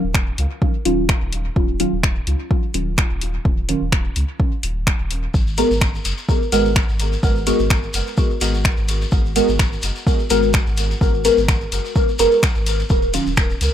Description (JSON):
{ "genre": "dub techno", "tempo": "127 BPM", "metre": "4/4", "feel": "swing 55% on 16ths", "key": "G# minor", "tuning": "A4 = 440 Hz", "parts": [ { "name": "deep mellow chord stab", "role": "stabs", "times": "0.0-13.3 s", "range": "D#3 to A#4", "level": "-20 LUFS", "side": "equal", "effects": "chorus, phaser, cassette tape, sidechain pumping, dub echo" }, { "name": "warm sub bass", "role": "bass", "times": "0.0-13.7 s", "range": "D#1 to C#2", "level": "-23 LUFS", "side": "equal", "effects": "sidechain pumping" }, { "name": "deep house drum kit", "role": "drums", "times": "0.1-13.7 s", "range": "finger snaps, hi-hat", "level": "-24 LUFS", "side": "left 1 dB", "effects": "overdrive" }, { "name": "electronic kick drum", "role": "drums", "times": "0.1-13.5 s", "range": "none", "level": "-18 LUFS", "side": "equal", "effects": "overdrive" }, { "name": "shekere", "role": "percussion", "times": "5.3-13.7 s", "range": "none", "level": "-28 LUFS", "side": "left 3 dB", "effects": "none" } ], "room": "little or no reverb", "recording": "none", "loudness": "-16 LUFS", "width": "side -10 dB against mid", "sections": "0.0-13.7 A section", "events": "filter sweep on synth stab 0.0-13.7", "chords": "0.0 D#m9; 5.3 G#m9; 12.9 D#m9" }